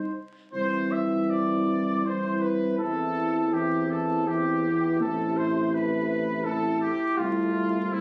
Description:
classical, hymn-like piece for brass band; 81 BPM; 3/4; uneven beats, rubato; C major; A4 = 440 Hz
bright trumpet section; melody; 0.0-8.0 s; E4 to E5; -31 LUFS; equal
dark French horn section; second line; 0.0-8.0 s; Eb4 to E4; -31 LUFS; equal
mellow euphonium; accompaniment; 0.0-8.0 s; A3 to Eb4; -36 LUFS; equal
mellow tuba; bass; 0.0-8.0 s; A1 to E2; -32 LUFS; equal
warm trombone; accompaniment; 0.5-8.0 s; C3 to E3; -37 LUFS; equal
moderate recital hall reverb, RT60 1.5 s; recorded on a phone in the room, club reverb, vinyl crackle; -26 LUFS; mono
0.5-8.0 A section
0.0 Cm; 0.5 C; 2.8 C/E; 5.0 Am; 7.2 Am/C

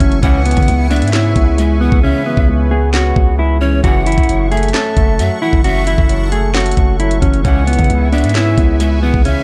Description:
hip hop, trap; 133 BPM; 4/4; half-time; C# minor; A4 = 440 Hz
mellow electric guitar; melody; 0.0-9.4 s; B3 to A4; -20 LUFS; equal; low-pass filter
felt-muted upright piano; accompaniment; 0.0-9.4 s; F#2 to C#4; -23 LUFS; equal; low-pass filter
sweeping resonant pad; sustained chords; 0.0-9.4 s; A4 to C#6; -30 LUFS; equal; chorus, tremolo
long sustained 808-style bass; bass; 0.0-9.4 s; F#1 to C#3; -17 LUFS; equal
trap drum kit; drums; 0.0-9.4 s; handclaps, hi-hat, kick drum, snare drum; -17 LUFS; equal; vintage 12-bit sampler grit
breathy pan flute; second line; 0.2-9.4 s; C#5 to F#5; -25 LUFS; equal; delay
bright brass ensemble; stabs; 0.2-0.6, 3.8-4.2, 7.4-7.8 s; C#2 to E3; -29 LUFS; equal
digital ambience; dark, warm production; -13 LUFS; mono
0.0-9.4 A section
hi-hats muted 2.0-3.8
0.2 C#m7; 3.8 F#m7; 7.4 C#m7

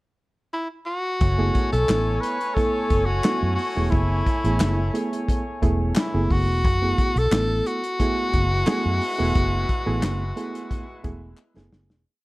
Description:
funk; 88 BPM; 4/4; straight; F# minor; A4 = 440 Hz
breathy tenor saxophone; melody; 0.5-11.4 s; E4 to B4; -25 LUFS; left 1 dB
clear horn section; second line; 1.2-11.7 s; G#3 to G#5; -33 LUFS; left 2 dB
vintage muted fingered electric bass; bass; 1.2-12.0 s; E1 to F#2; -23 LUFS; equal
warm soul drum kit; drums; 1.2-12.0 s; handclaps, hi-hat, kick drum, snare drum; -24 LUFS; equal
reed electric piano; stabs; 1.4-12.0 s; A3 to A4; -28 LUFS; right 3 dB; analog delay
group handclap; percussion; 1.9-11.5 s; -36 LUFS; left 3 dB
light reverb, small room ambience; dark, warm production; -20 LUFS; side -20 dB against mid
0.0-1.2 pickup bar; 1.2-12.1 A section
fade-out 9.4-12.1; drum fill 11.4-12.1
0.0 N.C.; 1.2 F#m11

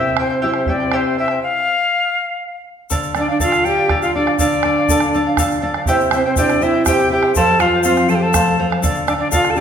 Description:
andean folk, Andean ensemble; 81 BPM (dotted quarters); 6/8; straight; D minor; A4 = 441 Hz
reedy quena; melody; 0.0-9.6 s; C5 to A5; -18 LUFS; left 3 dB
charango; accompaniment; 0.0-9.6 s; E4 to G5; -20 LUFS; right 2 dB
nylon-string guitar; accompaniment; 0.0-9.6 s; F2 to A4; -22 LUFS; left 3 dB
bombo; percussion; 0.2-9.6 s; -22 LUFS; right 3 dB
egg shaker; percussion; 2.9-9.6 s; -26 LUFS; left 7 dB
breathy bright pan flute; second line; 3.2-9.6 s; C4 to A4; -20 LUFS; right 3 dB
wet recital hall reverb, RT60 1.2 s; minimal, uncompressed stereo recording; -14 LUFS; side -8 dB against mid
0.0-2.9 A section; 2.9-9.6 B section
0.0 C; 1.4 N.C.; 2.9 Dm; 5.9 C; 7.4 F; 8.8 Dm

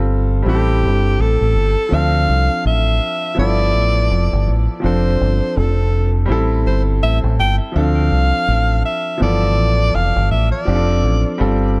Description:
lovers rock reggae; 82 BPM; 4/4; swing 58% on 16ths; A minor; A4 = 440 Hz
warm grand piano; accompaniment; 0.0-11.8 s; E3 to A4; -24 LUFS; equal
deep dub fingered electric bass; bass; 0.0-11.8 s; F1 to D2; -18 LUFS; equal
breathy alto saxophone; melody; 0.5-11.6 s; G4 to G5; -23 LUFS; equal; tape echo
small room ambience; -16 LUFS; mono
0.5-11.8 A section
0.5 Am7; 1.9 Dm7; 3.4 G13; 4.8 F6; 6.3 Am7; 7.7 Dm7; 9.2 G13; 10.7 F6

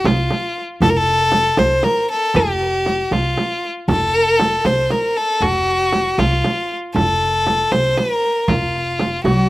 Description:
Persian modal ensemble; 78 BPM (dotted quarters); 6/8; straight; F dastgah chahargah; A4 = 439 Hz
clear violin; melody; 0.0-9.5 s; F4 to C5; -16 LUFS; left 1 dB; slapback echo
upright bass; bass; 0.0-9.5 s; F1 to C2; -23 LUFS; equal
frame drum; percussion; 0.1-9.4 s; -20 LUFS; right 2 dB
santur; second line; 9.2-9.5 s; Gb4+45c; -21 LUFS; right 1 dB
dark cello; second line; 9.3-9.5 s; Gb3+46c; -18 LUFS; left 1 dB
little or no reverb; recorded outdoors, with no room sound; -15 LUFS; side -18 dB against mid
0.0-9.5 A section

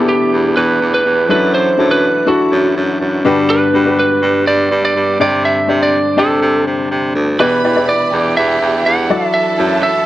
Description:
piano-driven pop; 123 BPM; 4/4; straight; G major; A4 = 441 Hz
lightly driven lead guitar; melody; 0.0-10.1 s; F#4 to F#5; -14 LUFS; right 2 dB; slapback echo
clear baby grand piano; accompaniment; 0.0-10.1 s; G2 to E5; -16 LUFS; left 4 dB
bright tonewheel organ; sustained chords; 0.0-10.1 s; D3 to G4; -27 LUFS; right 3 dB; overdrive, chorus vibrato, lush chorus
clear baritone saxophone; bass; 0.0-9.9 s; D2 to C3; -17 LUFS; right 1 dB
warm studio violin section; second line; 7.4-10.1 s; G4 to B5; -22 LUFS; right 4 dB
light reverb; dry, close 1970s-style studio recording; -11 LUFS; side -14 dB against mid
0.0-10.1 A section
0.0 Em7; 1.3 Dadd9/F#; 3.3 Gmaj7; 5.2 Csus2; 7.4 Em7; 9.1 Dadd9

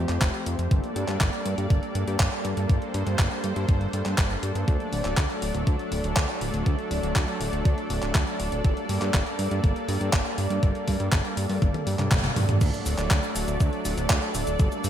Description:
italo disco; 121 BPM; 4/4; straight; G minor; A4 = 435 Hz
lush unison pad; sustained chords; 0.0-14.9 s; F3 to D5; -29 LUFS; equal; chorus
fat analog bass; bass; 0.0-14.9 s; D1 to G2; -28 LUFS; equal
clean 12-bit digital drum machine; drums; 0.1-14.9 s; cabasa, crash cymbal, handclaps, hi-hat, toms; -30 LUFS; equal; gated reverb
electronic kick drum; drums; 0.2-14.7 s; -23 LUFS; equal
light reverb; bright 1980s-style digital production; -23 LUFS; side -10 dB against mid
0.0-12.6 A section; 12.6-14.9 B section
drum fill 11.6-12.6; band accent 12.1
0.0 F; 0.7 Gmadd9; 4.7 D; 8.6 Gmadd9; 12.6 D

